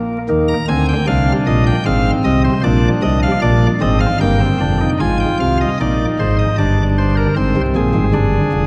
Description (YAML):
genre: classical, baroque-style 3-part fugue for pipe organ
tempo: 76 BPM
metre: 3/4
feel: straight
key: Eb major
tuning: A4 = 440 Hz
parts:
  - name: chamber organ, cornet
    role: solo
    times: 0.0-8.7 s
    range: F1 to Bb5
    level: -15 LUFS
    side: equal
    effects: none
room: wet church reverb, RT60 3.6 s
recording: vinyl crackle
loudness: -15 LUFS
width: mono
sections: 0.3-5.0 A section; 5.0-8.7 B section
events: none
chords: 0.3 Eb; 1.9 Fm7/Ab; 2.6 Bb7; 4.2 Eb/G; 5.0 Ab; 6.6 Gm; 7.4 Fm/Ab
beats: | 0.29 1.08 1.86 | 2.64 3.43 4.21 | 5.01 5.80 6.59 | 7.37 8.15